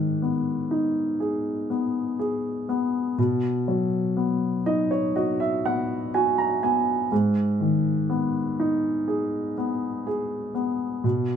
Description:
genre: pop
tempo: 61 BPM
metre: 4/4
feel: straight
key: G# minor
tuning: A4 = 440 Hz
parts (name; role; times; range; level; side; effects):
- dark grand piano; solo; 0.0-11.4 s; G#2 to A#5; -22 LUFS; equal; none
room: moderate studio reverb, RT60 0.8 s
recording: band playing live in one room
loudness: -22 LUFS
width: side -8 dB against mid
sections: 0.0-11.4 A section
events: grand piano fill 4.2-7.1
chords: 0.0 G#m; 3.2 B; 7.1 G#m

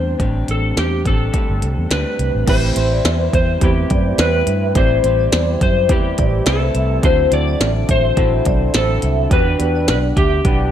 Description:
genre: indie pop, bedroom pop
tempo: 105 BPM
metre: 4/4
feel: swing 55% on 16ths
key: A dorian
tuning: A4 = 438 Hz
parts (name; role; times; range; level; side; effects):
- electric slide guitar; melody; 0.0-10.7 s; G4 to D5; -20 LUFS; left 3 dB; lush chorus, slapback echo
- electric guitar through a small old amp; accompaniment; 0.0-10.7 s; A2 to G4; -24 LUFS; left 3 dB; lush chorus, vibrato effect
- vintage muted fingered electric bass; bass; 0.0-10.7 s; G1 to G2; -18 LUFS; equal; none
- minimal click drum kit; drums; 0.2-10.6 s; crash cymbal, hi-hat, kick drum, snare drum; -18 LUFS; equal; overdrive
- vibraphone with medium mallets; second line; 2.5-10.3 s; B4 to E5; -26 LUFS; right 5 dB; ensemble chorus, slapback echo
- soft electric-piano-like synth keys; accompaniment; 2.5-10.7 s; C4 to F#5; -25 LUFS; right 7 dB; chorus
room: digital ambience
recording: none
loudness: -14 LUFS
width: side -10 dB against mid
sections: 0.0-2.5 A section; 2.5-10.7 B section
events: none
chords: 0.0 Am11; 2.5 Am7; 7.0 D9; 9.3 Em7

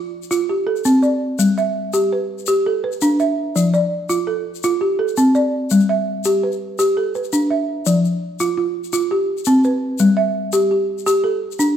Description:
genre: west african traditional, West African string and xylophone music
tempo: 112 BPM (dotted quarters)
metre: 12/8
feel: straight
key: F lydian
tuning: A4 = 440 Hz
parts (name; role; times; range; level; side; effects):
- balafon; arpeggios; 0.0-11.8 s; F3 to E5; -16 LUFS; equal; none
- egg shaker; percussion; 0.2-11.7 s; none; -28 LUFS; left 9 dB; none
room: moderate recital hall reverb, RT60 1.4 s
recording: dark, warm production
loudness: -16 LUFS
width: side -9 dB against mid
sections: 0.0-7.9 A section; 7.9-11.8 B section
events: none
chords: 0.0 F; 1.4 G; 3.6 F; 5.7 G; 7.9 F5; 10.0 N.C.

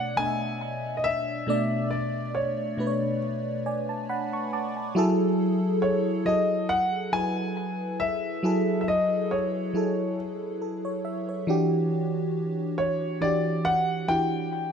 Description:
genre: R&B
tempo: 69 BPM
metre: 4/4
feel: swing 54% on 16ths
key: unclear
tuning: A4 = 440 Hz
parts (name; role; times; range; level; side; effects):
- warm concert grand piano; melody; 0.0-14.7 s; C#5 to G#5; -27 LUFS; left 1 dB; ping-pong delay
- FM electric piano with soft pad layer; accompaniment; 0.0-14.7 s; B2 to D6; -26 LUFS; equal; chorus
room: moderate plate reverb, RT60 2.4 s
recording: dark, warm production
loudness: -24 LUFS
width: side -7 dB against mid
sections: 0.0-14.7 A section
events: FM electric piano fill 3.2-5.0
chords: 0.0 Bm9; 5.0 F#m9; 11.5 Em9

